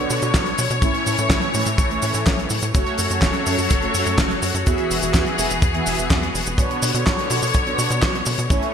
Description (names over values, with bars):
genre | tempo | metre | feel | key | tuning
italo disco | 125 BPM | 4/4 | straight | unclear | A4 = 441 Hz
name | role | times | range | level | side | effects
clear studio string section | sustained chords | 0.0-8.7 s | D3 to C#5 | -23 LUFS | left 2 dB | none
mellow synth brass | stabs | 0.0-8.7 s | A2 to E5 | -25 LUFS | right 2 dB | chorus, phaser, ping-pong delay
tight sequencer bass | bass | 0.0-8.6 s | E1 to B2 | -26 LUFS | equal | none
damped 70s drum kit | drums | 0.1-8.7 s | cabasa, handclaps, hi-hat, snare drum | -23 LUFS | left 1 dB | studio reverb, gated reverb
kick drum | drums | 0.3-8.6 s | none | -20 LUFS | equal | studio reverb
room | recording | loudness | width
moderate lush hall reverb, RT60 1.8 s, small room ambience | bright 1980s-style digital production | -17 LUFS | side -8 dB against mid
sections
0.0-8.7 A section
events
none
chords
0.0 Bmadd9; 0.8 A; 2.7 F#m; 4.7 Eadd9; 6.6 Bmadd9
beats
0.34 | 0.82 1.30 1.78 2.26 | 2.74 3.22 3.70 4.18 | 4.66 5.14 5.62 6.10 | 6.58 7.06 7.54 8.02 | 8.50